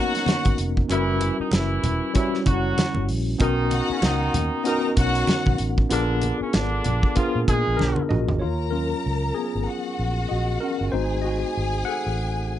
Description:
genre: lush 1970s-style soul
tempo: 96 BPM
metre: 4/4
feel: swing 58% on 16ths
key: Eb minor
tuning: A4 = 437 Hz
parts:
  - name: warm symphonic string section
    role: second line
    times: 0.0-12.6 s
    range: Gb4 to A#5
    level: -30 LUFS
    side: left 2 dB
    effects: none
  - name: tine electric piano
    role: accompaniment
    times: 0.0-12.6 s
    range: Gb3 to Gb5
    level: -26 LUFS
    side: left 2 dB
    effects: medium stereo tremolo
  - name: clear horn section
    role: stabs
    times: 0.0-8.1 s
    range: C#3 to Ab4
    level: -27 LUFS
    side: right 1 dB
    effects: none
  - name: warm soul drum kit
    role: drums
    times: 0.1-8.4 s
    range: hi-hat, kick drum, snare drum, toms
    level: -24 LUFS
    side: equal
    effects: none
  - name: congas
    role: percussion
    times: 0.3-8.1 s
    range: none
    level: -30 LUFS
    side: right 3 dB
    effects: none
  - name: vintage muted fingered electric bass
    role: bass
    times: 0.5-12.6 s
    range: Fb1 to Bb2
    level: -25 LUFS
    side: equal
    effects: none
room: little or no reverb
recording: nothing above 10.4 kHz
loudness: -20 LUFS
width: side -12 dB against mid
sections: 0.0-8.4 A section; 8.4-12.6 B section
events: drum fill 7.8-8.4; tine electric piano solo 8.4-12.6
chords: 0.0 Abm11 (rootless); 0.9 Gb7b9; 3.4 Bmaj9; 5.9 Bb7b9; 8.4 Ebm9; 10.9 Ab7b9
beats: 0.27 | 0.90 1.53 2.15 2.78 | 3.41 4.03 4.66 5.29 | 5.92 6.54 7.17 7.80 | 8.42 9.05 9.68 10.31 | 10.94 11.57 12.20

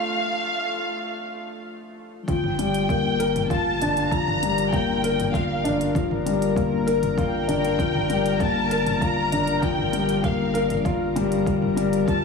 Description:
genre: piano and strings electronica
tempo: 98 BPM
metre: 4/4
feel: straight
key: unclear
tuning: A4 = 439 Hz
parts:
  - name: dark studio violin section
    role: melody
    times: 0.0-12.2 s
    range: F5 to Bb5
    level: -27 LUFS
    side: equal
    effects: digital delay
  - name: felt-muted upright piano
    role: riff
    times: 0.0-12.2 s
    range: F3 to Bb4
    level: -24 LUFS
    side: left 3 dB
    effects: digital delay
  - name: round analog bass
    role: bass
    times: 2.3-12.2 s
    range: G1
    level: -31 LUFS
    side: equal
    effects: sidechain pumping
  - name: electronic kick drum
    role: drums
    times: 2.3-12.2 s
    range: none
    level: -28 LUFS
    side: equal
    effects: none
  - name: organic electronic drum kit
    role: drums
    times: 2.3-12.2 s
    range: hi-hat, toms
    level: -32 LUFS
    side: right 2 dB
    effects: overdrive, high-pass filter on hats, high-pass filter on toms, high-pass filter on room
  - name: granular cloud pad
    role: sustained chords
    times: 5.6-12.2 s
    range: Bb4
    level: -31 LUFS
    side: left 5 dB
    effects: built-in reverb, sidechain pumping
room: moderate concert hall reverb, RT60 2.0 s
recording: high-pass filter, studio reverb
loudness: -20 LUFS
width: side -4 dB against mid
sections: 0.0-2.3 A section; 2.3-12.2 B section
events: break 0.0-2.3; build-up 0.0-2.3; filter sweep 0.0-2.3; drop 2.3-12.2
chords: 0.0 Dm; 2.3 Gm7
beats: 0.44 1.05 1.67 | 2.28 2.89 3.50 4.12 | 4.73 5.34 5.95 6.57 | 7.18 7.79 8.40 9.01 | 9.63 10.24 10.85 11.46 | 12.07

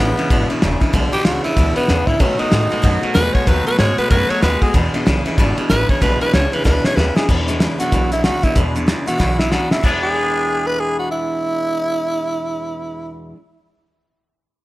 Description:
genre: rockabilly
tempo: 189 BPM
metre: 4/4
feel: swing 61% on 8ths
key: E mixolydian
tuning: A4 = 436 Hz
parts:
  - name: growling tenor saxophone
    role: melody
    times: 0.0-13.1 s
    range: B3 to C#5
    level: -20 LUFS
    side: equal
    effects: slapback echo
  - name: picked steel-string acoustic guitar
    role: accompaniment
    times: 0.0-13.4 s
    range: E2 to F#4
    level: -24 LUFS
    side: left 2 dB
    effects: none
  - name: twangy electric guitar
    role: riff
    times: 0.0-13.4 s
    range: E2 to G#4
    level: -23 LUFS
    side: right 1 dB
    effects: phaser
  - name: upright bass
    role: bass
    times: 0.0-13.0 s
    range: E1 to B2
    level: -20 LUFS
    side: equal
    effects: none
  - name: cloth-damped thuddy drum kit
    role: drums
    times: 0.2-9.9 s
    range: crash cymbal, hi-hat, kick drum, ride cymbal, snare drum, toms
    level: -18 LUFS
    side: equal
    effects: none
room: studio ambience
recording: none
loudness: -14 LUFS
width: side -18 dB against mid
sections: 0.0-7.3 A section; 7.3-9.8 B section; 9.8-12.4 C section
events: drum fill 1.9-2.2, 6.7-7.3, 9.2-9.8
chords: 0.0 E7; 2.2 B7; 4.7 E7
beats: 0.30 0.62 | 0.94 1.25 1.57 1.89 | 2.21 2.52 2.84 3.16 | 3.48 3.79 4.11 4.43 | 4.75 5.06 5.38 5.70 | 6.02 6.33 6.65 6.97 | 7.29 7.61 7.93 8.24 | 8.56 8.88 9.20 9.52 | 9.84 10.16 10.47 10.79 | 11.11 11.43 11.75 12.07

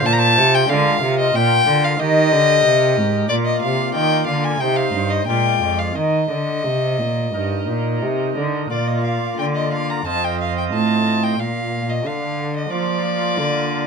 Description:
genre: classical, baroque-style sonata movement with continuo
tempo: 90 BPM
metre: 4/4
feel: rubato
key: Eb major, Bb major from 8.7 s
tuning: A4 = 441 Hz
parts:
  - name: rich violin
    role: melody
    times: 0.0-13.9 s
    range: D5 to Bb5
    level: -20 LUFS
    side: left 3 dB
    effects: none
  - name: pipe organ, cornet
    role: accompaniment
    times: 0.0-13.9 s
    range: F2 to Eb5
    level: -23 LUFS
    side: equal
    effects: none
  - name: rich cello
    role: bass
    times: 0.0-13.9 s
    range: F2 to F3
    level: -20 LUFS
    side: right 2 dB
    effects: none
room: light reverb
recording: none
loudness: -16 LUFS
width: side -5 dB against mid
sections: 0.0-8.7 A section; 8.7-13.9 A section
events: none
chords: 0.0 F5; 0.7 Bb7; 2.0 Eb; 3.3 Bb; 4.6 Cm; 5.3 Bb7; 6.0 Eb; 8.7 Bb; 10.1 F7; 11.4 Bb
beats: 0.04 | 0.69 1.34 1.99 2.64 | 3.29 3.94 4.60 5.27 | 5.95 6.64 7.33 8.02 | 8.71 9.38 10.05 10.72 | 11.38 12.05 12.71 13.37

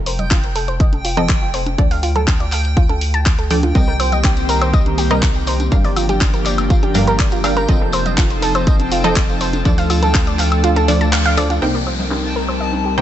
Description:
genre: progressive house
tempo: 122 BPM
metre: 4/4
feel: straight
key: unclear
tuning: A4 = 438 Hz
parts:
  - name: wide unison pluck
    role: stabs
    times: 0.0-13.0 s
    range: G2 to G5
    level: -21 LUFS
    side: right 1 dB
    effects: sidechain pumping, tape echo
  - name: round analog bass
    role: bass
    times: 0.0-13.0 s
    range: F1 to D2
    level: -20 LUFS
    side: equal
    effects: sidechain pumping
  - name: backwards swelling texture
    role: texture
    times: 0.1-13.0 s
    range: G5 to A5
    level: -28 LUFS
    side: equal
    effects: built-in reverb, sidechain pumping
  - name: analog pluck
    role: arpeggios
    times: 0.1-13.0 s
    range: F4 to D6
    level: -22 LUFS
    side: right 2 dB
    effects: chorus, sidechain pumping, tape echo
  - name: house drum kit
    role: drums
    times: 0.1-13.0 s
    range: crash cymbal, handclaps, hi-hat, woodblock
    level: -23 LUFS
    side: left 1 dB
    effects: sidechain pumping on hats, low-pass filter on hats, low-pass filter on snare, sidechain pumping on perc, low-pass filter on perc, sidechain pumping on cymbals, low-pass filter on cymbals, low-pass filter on room
  - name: congas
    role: percussion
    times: 0.2-12.8 s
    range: none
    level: -28 LUFS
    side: equal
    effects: sidechain pumping on perc
  - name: electronic kick drum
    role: drums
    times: 0.3-10.2 s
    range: none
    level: -15 LUFS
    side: equal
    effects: none
  - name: airy breathy pad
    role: sustained chords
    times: 3.8-13.0 s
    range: Eb3 to Bb4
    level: -22 LUFS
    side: left 2 dB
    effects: chorus, sidechain pumping
  - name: tambourine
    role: percussion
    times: 3.8-11.6 s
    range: none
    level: -32 LUFS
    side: left 4 dB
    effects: none
  - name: downlifter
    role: sound effects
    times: 11.6-13.0 s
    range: none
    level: -28 LUFS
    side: left 4 dB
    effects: none
room: little or no reverb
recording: nothing above 8.0 kHz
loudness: -13 LUFS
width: side -11 dB against mid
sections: 0.0-11.6 A section; 11.6-13.0 B section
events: filter sweep on synth pluck 0.0-11.6, 11.6-13.0; kick drops out 10.6-11.6; band accent 11.1; filter sweep on analog synth pad 11.6-13.0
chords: 0.0 F7; 1.8 Dm; 3.8 Cm7; 5.7 Gm7; 7.7 F7; 9.7 Dm; 11.6 Cm7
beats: 0.31 0.80 1.29 | 1.78 2.28 2.77 3.26 | 3.75 4.24 4.74 5.23 | 5.72 6.21 6.70 7.20 | 7.69 8.18 8.67 9.16 | 9.65 10.15 10.64 11.13 | 11.62 12.11 12.61

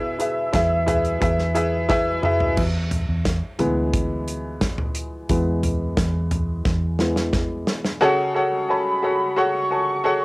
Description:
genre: piano-driven pop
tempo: 88 BPM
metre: 4/4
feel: straight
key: unclear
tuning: A4 = 445 Hz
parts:
  - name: warm velvety synth lead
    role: melody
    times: 0.0-1.9, 8.7-10.2 s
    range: E5 to C#6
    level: -25 LUFS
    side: equal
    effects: chorus, cassette tape, plate reverb
  - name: clear upright piano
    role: accompaniment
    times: 0.0-10.2 s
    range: B2 to A5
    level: -22 LUFS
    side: equal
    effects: cassette tape, plate reverb
  - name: vintage muted fingered electric bass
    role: bass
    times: 0.0-7.6 s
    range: D2 to E2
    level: -24 LUFS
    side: equal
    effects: none
  - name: natural country drum kit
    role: drums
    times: 0.2-8.0 s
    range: crash cymbal, hi-hat, kick drum, snare drum, toms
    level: -24 LUFS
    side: equal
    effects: none
room: light reverb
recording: home recording on cassette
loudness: -19 LUFS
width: side -22 dB against mid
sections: 0.0-2.6 A section; 2.6-8.0 B section; 8.0-10.2 C section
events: drum fill 1.9-2.6, 6.7-8.0; upright piano solo 2.6-8.0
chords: 0.0 E; 8.0 F#madd9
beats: 0.54 1.22 1.90 | 2.58 3.26 3.94 4.62 | 5.30 5.98 6.66 7.34 | 8.02 8.70 9.37 10.05

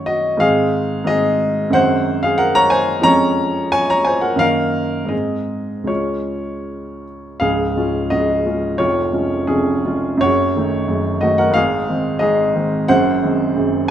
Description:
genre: classical, romantic character piece for solo piano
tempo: 74-94 BPM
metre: 2/4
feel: rubato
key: Db major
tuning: A4 = 440 Hz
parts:
  - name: warm baby grand piano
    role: solo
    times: 0.0-13.9 s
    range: Db1 to Bb5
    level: -15 LUFS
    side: equal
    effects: none
room: moderate recital hall reverb, RT60 1.5 s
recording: close, detailed microphones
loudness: -15 LUFS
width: side -10 dB against mid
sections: 0.0-7.4 A section; 7.4-13.9 B section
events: none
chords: 0.4 Ab; 1.8 Ab7/Gb; 3.1 Db/F; 4.4 Ebm/Gb; 5.1 Ab; 5.9 Db; 8.8 Db/F; 10.2 Ebm7b5/Gb; 11.6 Ab; 12.9 Ab7/Gb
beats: | 0.43 1.09 | 1.75 2.40 | 3.06 3.74 | 4.40 5.11 | 5.89 6.68 | 7.42 8.12 | 8.80 9.49 | 10.22 10.90 | 11.57 12.23 | 12.89 13.56

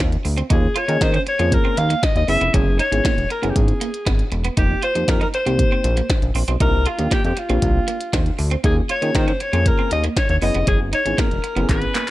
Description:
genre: early-eighties boogie funk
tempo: 118 BPM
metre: 4/4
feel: straight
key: unclear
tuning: A4 = 439 Hz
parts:
  - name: breathy alto saxophone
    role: melody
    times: 0.0-12.1 s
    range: F4 to F5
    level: -22 LUFS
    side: left 1 dB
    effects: slapback echo
  - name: electric guitar at the edge of break-up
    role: riff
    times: 0.0-12.0 s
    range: Bb3 to F4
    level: -29 LUFS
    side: right 6 dB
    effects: lush chorus
  - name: chorused synth bass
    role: bass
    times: 0.0-11.9 s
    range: Fb1 to Eb3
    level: -20 LUFS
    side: equal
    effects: none
  - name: minimal click drum kit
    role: drums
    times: 0.0-12.1 s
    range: handclaps, hi-hat, kick drum, snare drum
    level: -20 LUFS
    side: equal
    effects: none
  - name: mellow FM electric piano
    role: accompaniment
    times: 0.5-12.1 s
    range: Bb3 to Ab4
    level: -26 LUFS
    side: equal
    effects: chorus
room: digital ambience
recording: none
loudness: -16 LUFS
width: side -16 dB against mid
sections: 0.0-12.1 A section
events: drum fill 11.7-12.1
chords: 0.0 Csus4; 0.5 Eb9sus4; 2.3 Gb9sus4; 4.6 F9sus4; 6.6 C9sus4; 8.6 Eb9sus4; 10.4 Gb9sus4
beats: 0.00 | 0.51 1.01 1.52 2.03 | 2.54 3.05 3.56 4.07 | 4.57 5.08 5.59 6.10 | 6.61 7.12 7.62 8.13 | 8.64 9.15 9.66 10.17 | 10.68 11.18 11.69

